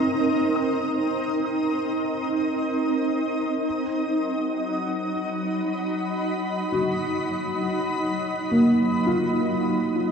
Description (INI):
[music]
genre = ambient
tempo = free time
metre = none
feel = none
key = unclear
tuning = A4 = 445 Hz
[part]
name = shimmering ambient pad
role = sustained chords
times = 0.0-10.1 s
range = F#3 to B5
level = -23 LUFS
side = equal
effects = chorus, built-in reverb
[part]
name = felt-muted upright piano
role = arpeggios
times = 0.0-10.1 s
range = G3 to Eb6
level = -24 LUFS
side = equal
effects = ping-pong delay
[sound]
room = wet concert hall reverb, RT60 2.2 s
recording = dark, warm production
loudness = -22 LUFS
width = side -6 dB against mid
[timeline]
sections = 0.0-10.1 A section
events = none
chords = 0.0 Eb6/G; 3.7 B